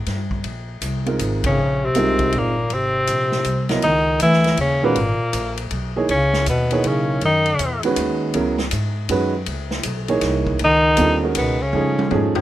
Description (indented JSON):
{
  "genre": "modal jazz",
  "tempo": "160 BPM",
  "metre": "3/4",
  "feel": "swing 65% on 8ths",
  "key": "Bb dorian, C# dorian from 3.8 s",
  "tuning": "A4 = 440 Hz",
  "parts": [
    { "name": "upright bass", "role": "bass", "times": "0.0-12.4 s", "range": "G1 to G#2", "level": "-25 LUFS", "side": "equal", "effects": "none" },
    { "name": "swinging big-band drum kit", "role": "drums", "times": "0.1-12.4 s", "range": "hi-hat, kick drum, ride cymbal, snare drum, toms", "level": "-27 LUFS", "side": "left 2 dB", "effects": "none" },
    { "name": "clear upright piano", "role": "accompaniment", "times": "1.1-12.3 s", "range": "C#3 to Eb5", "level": "-21 LUFS", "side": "right 3 dB", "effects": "none" },
    { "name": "bright tenor saxophone", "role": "melody", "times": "1.5-7.8, 10.6-12.1 s", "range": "A#3 to E4", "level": "-20 LUFS", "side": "equal", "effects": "none" },
    { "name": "dark bass clarinet", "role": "second line", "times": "1.5-7.8, 10.6-12.1 s", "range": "A#2 to E3", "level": "-22 LUFS", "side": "left 2 dB", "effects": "none" }
  ],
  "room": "little or no reverb",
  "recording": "rough home demo mix",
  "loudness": "-17 LUFS",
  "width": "side -13 dB against mid",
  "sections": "0.0-3.8 A section; 3.8-12.4 B section",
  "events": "band accent 1.4; drum fill 11.7-12.4",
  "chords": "0.0 Bbm69; 2.7 Ab; 3.8 C#m9; 6.1 Badd9; 8.4 C#m11; 10.6 C#13; 11.7 F7alt",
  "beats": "0.07 | 0.45 0.82 1.20 | 1.58 1.96 2.33 | 2.71 3.08 3.46 | 3.84 4.21 4.59 | 4.97 5.34 5.72 | 6.09 6.47 6.85 | 7.22 7.60 7.98 | 8.35 8.73 9.10 | 9.48 9.86 10.23 | 10.61 10.98 11.36 | 11.74 12.11"
}